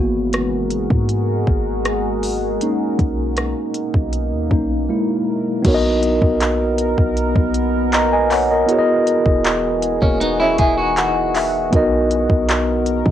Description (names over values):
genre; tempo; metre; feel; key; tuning
contemporary R&B; 79 BPM; 4/4; straight; B major; A4 = 439 Hz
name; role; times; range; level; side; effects
mellow tine electric piano; accompaniment; 0.0-13.1 s; G#3 to A#5; -18 LUFS; left 1 dB; medium stereo tremolo, plate reverb
deep dark ambient pad; sustained chords; 0.0-13.1 s; B2 to A#4; -23 LUFS; right 2 dB; chorus, built-in reverb, sidechain pumping, plate reverb
clean 808-style bass; bass; 0.0-13.1 s; E1 to B2; -23 LUFS; equal; none
smooth R&B drum kit; drums; 0.3-13.1 s; crash cymbal, handclaps, hi-hat, kick drum, rim click; -20 LUFS; equal; cassette tape
clean electric guitar; arpeggios; 10.0-11.7 s; A#3 to G#4; -19 LUFS; right 2 dB; tremolo, analog delay
room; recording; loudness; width
moderate studio reverb, RT60 0.6 s; home recording on cassette; -15 LUFS; side -11 dB against mid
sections
0.0-5.6 A section; 5.6-13.1 B section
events
tine electric piano solo 0.0-5.6; tine electric piano fill 10.2-11.7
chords
0.0 G#m9; 2.6 Bmaj7; 4.9 F#7; 5.6 Bmaj7; 8.7 Emaj9; 11.7 Bmaj7